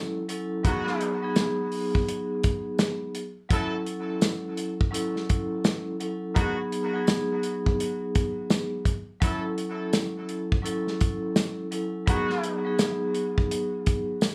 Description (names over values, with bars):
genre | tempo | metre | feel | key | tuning
hip hop, boom-bap hip-hop | 84 BPM | 4/4 | swing 62% on 16ths | unclear | A4 = 438 Hz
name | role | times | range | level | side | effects
vibraphone with soft mallets | accompaniment | 0.0-14.3 s | F#3 to A4 | -31 LUFS | equal | high-pass filter, low-pass filter
warm soul drum kit | drums | 0.3-14.3 s | hi-hat, kick drum, snare drum | -27 LUFS | equal | none
clear horn section | stabs | 0.6-12.6 s | D#3 to A4 | -37 LUFS | equal | high-pass filter, low-pass filter, digital delay
tambourine | percussion | 1.4-14.3 s | none | -43 LUFS | equal | none
room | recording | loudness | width
light reverb | studio ambience | -27 LUFS | mono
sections
0.0-14.3 A section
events
none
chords
0.0 F#m7; 0.6 G#m7; 3.5 F#m7; 6.4 G#m7; 9.2 F#m7; 12.1 G#m7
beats
| 0.65 1.36 2.08 2.79 | 3.50 4.22 4.93 5.65 | 6.36 7.08 7.79 8.50 | 9.22 9.93 10.65 11.36 | 12.07 12.79 13.50 14.22